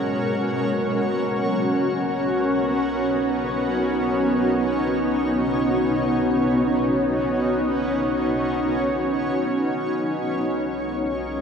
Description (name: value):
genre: ambient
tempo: free time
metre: none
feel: none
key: B major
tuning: A4 = 438 Hz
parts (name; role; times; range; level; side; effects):
- granular cloud pad; sustained chords; 0.0-11.4 s; B2 to C#5; -20 LUFS; equal; built-in reverb
- deep rumbling drone; bass; 2.1-11.4 s; B1; -42 LUFS; equal; built-in reverb
room: wet lush hall reverb, RT60 2.6 s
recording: none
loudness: -20 LUFS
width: side -6 dB against mid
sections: 0.0-1.0 A section; 1.0-11.4 B section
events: fade-in on synth drone 1.0-11.4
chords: 0.0 F#add9/B; 1.0 Badd9; 9.7 A#m7/B